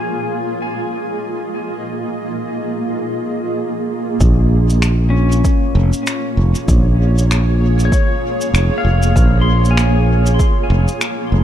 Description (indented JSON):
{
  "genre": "ambient dub",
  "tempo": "97 BPM",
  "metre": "4/4",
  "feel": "swing 57% on 16ths",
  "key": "Bb minor",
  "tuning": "A4 = 440 Hz",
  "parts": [
    { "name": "granular cloud pad", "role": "sustained chords", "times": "0.0-11.4 s", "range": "Bb3 to Eb5", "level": "-21 LUFS", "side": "right 1 dB", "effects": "built-in reverb" },
    { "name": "pedal steel guitar", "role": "arpeggios", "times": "0.0-11.4 s", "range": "Db4 to C6", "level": "-24 LUFS", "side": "left 5 dB", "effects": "tape echo" },
    { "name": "modern bright fingered electric bass", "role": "bass", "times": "4.2-11.4 s", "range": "F1 to Bb1", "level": "-13 LUFS", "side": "equal", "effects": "none" },
    { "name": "cabasa and finger snaps", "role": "drums", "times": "4.2-11.2 s", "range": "none", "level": "-24 LUFS", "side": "equal", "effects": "low-pass filter on perc, low-pass filter on snare, low-pass filter on room, dub echo" },
    { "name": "electronic kick drum", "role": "drums", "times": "4.2-10.5 s", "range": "none", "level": "-15 LUFS", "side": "equal", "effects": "overdrive" }
  ],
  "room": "studio ambience",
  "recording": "dark, warm production",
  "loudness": "-13 LUFS",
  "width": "side -10 dB against mid",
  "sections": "0.0-4.2 A section; 4.2-11.4 B section",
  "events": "none",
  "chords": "0.0 Bb7(no3); 4.2 Bbm7"
}